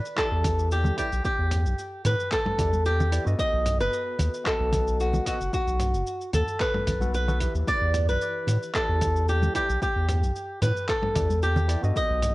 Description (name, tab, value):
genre	sunset chillout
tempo	112 BPM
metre	4/4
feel	swing 53% on 16ths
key	E minor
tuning	A4 = 439 Hz
part	flamenco guitar	melody	0.0-12.3 s	F#4 to D#5	-26 LUFS	equal	cassette tape, tape echo
part	dusty soul sampler-style drum kit	drums	0.1-12.3 s	handclaps, hi-hat, shaker, toms	-34 LUFS	equal	overdrive, studio reverb, cassette tape
part	tine electric piano	accompaniment	0.2-12.3 s	E3 to F#5	-36 LUFS	equal	medium stereo tremolo, auto-pan
part	electronic kick drum	drums	0.2-12.1 s	none	-32 LUFS	equal	studio reverb, cassette tape
part	round analog bass	bass	0.3-12.3 s	F#1 to A2	-24 LUFS	equal	none
part	congas	percussion	0.4-11.7 s	none	-31 LUFS	equal	none
room	light reverb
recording	home recording on cassette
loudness	-23 LUFS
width	side -19 dB against mid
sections	0.0-12.3 A section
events	none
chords	0.0 Em7; 3.4 B7; 7.7 Em7